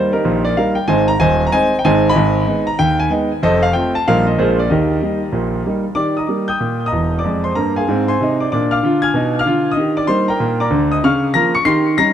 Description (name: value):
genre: jazz, stride piano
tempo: 189 BPM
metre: 4/4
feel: swing 63% on 8ths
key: Eb major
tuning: A4 = 440 Hz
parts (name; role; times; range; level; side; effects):
- clear concert grand piano; solo; 0.0-12.1 s; Eb1 to Db7; -14 LUFS; equal; tape echo
room: light reverb, small room ambience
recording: dry, close 1970s-style studio recording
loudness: -14 LUFS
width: side -9 dB against mid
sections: 0.0-6.0 A section; 6.0-12.1 A section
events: none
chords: 0.0 Eb; 0.9 Ab; 2.2 Abm; 3.4 F; 4.1 Eb/Bb; 4.4 Bb9; 4.7 Eb; 7.2 Bb7/F; 8.5 Bb7b9; 9.8 Eb; 11.1 Bbm/Db